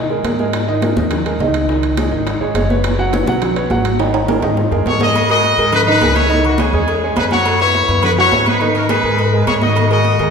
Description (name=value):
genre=latin, salsa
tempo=208 BPM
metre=4/4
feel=straight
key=unclear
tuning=A4 = 440 Hz
part: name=warm concert grand piano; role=accompaniment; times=0.0-10.3 s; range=D#3 to F#5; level=-18 LUFS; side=right 2 dB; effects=none
part: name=upright bass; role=bass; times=0.0-10.3 s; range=F#1 to B2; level=-19 LUFS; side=left 1 dB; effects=none
part: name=bongos and cowbell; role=percussion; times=0.1-10.2 s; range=none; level=-25 LUFS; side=left 4 dB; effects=none
part: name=congas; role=percussion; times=0.1-10.3 s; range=none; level=-22 LUFS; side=right 1 dB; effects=none
part: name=timbales and agogo bells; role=percussion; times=0.2-10.3 s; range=none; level=-24 LUFS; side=right 4 dB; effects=none
part: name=brilliant horn section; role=melody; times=4.9-10.3 s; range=A#3 to D#5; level=-15 LUFS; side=left 2 dB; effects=none
room=wet scoring stage reverb, RT60 1.5 s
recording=recorded in a church or concert hall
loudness=-12 LUFS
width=side -6 dB against mid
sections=0.0-5.2 A section; 5.2-10.3 B section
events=drum fill 4.0-5.2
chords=0.0 G#madd9; 1.7 C#sus2; 2.8 F#sus4; 4.0 G#sus2; 5.2 C#madd9; 7.5 F#sus4; 8.6 G#madd9